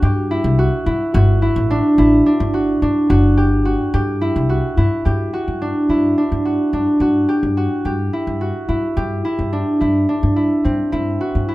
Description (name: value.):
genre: contemporary instrumental, chamber music in an uneven meter.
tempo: 215 BPM (eighths).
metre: 7/8.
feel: straight.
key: unclear.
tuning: A4 = 442 Hz.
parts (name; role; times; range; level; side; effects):
concert harp; arpeggios; 0.0-11.5 s; C4 to G4; -16 LUFS; equal; none.
upright bass; bass; 0.0-11.5 s; F#1 to G2; -19 LUFS; equal; none.
room: light reverb.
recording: close, detailed microphones.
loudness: -15 LUFS.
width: side -18 dB against mid.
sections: 0.0-5.1 A section; 5.1-11.5 B section.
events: none.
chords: 0.0 D; 5.1 G5; 9.0 Cadd9/G; 10.9 Em9/G.